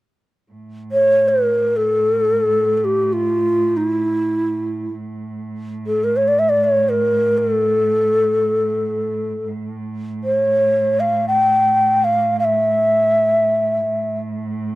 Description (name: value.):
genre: persian.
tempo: free time.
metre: none.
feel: none.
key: A dastgah homayun.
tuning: A4 = 435 Hz.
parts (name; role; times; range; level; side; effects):
muted cello; drone; 0.5-14.8 s; A2; -26 LUFS; right 2 dB; stereo widening.
breathy mellow low ney; melody; 0.9-14.2 s; E4 to G5; -15 LUFS; equal; slapback echo.
room: little or no reverb.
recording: recorded outdoors, with no room sound.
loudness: -15 LUFS.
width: side -17 dB against mid.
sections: 0.5-14.8 A section.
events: none.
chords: none.